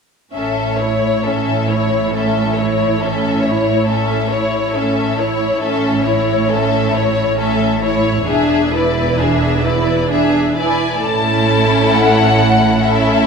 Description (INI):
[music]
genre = classical, slow romantic movement for string orchestra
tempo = 68 BPM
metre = 3/4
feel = rubato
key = A major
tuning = A4 = 441 Hz
[part]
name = rich studio violin section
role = melody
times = 0.3-13.3 s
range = C#5 to A5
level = -20 LUFS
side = left 5 dB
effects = none
[part]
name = rich studio violin section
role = second line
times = 0.3-13.3 s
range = E4 to C#5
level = -19 LUFS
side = left 4 dB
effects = none
[part]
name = rich studio viola section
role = accompaniment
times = 0.3-13.3 s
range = A3 to E4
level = -18 LUFS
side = right 2 dB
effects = none
[part]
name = rich studio cello section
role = bass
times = 0.3-13.3 s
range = E2 to A2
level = -21 LUFS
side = right 3 dB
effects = none
[part]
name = rich studio double bass section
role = bass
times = 0.3-13.3 s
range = E1 to A1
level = -22 LUFS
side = right 5 dB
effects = none
[sound]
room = moderate concert hall reverb, RT60 1.7 s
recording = minimal, uncompressed stereo recording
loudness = -13 LUFS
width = side -5 dB against mid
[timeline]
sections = 0.3-11.0 A section; 11.0-13.3 B section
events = none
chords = 0.3 A; 8.3 E7; 11.0 A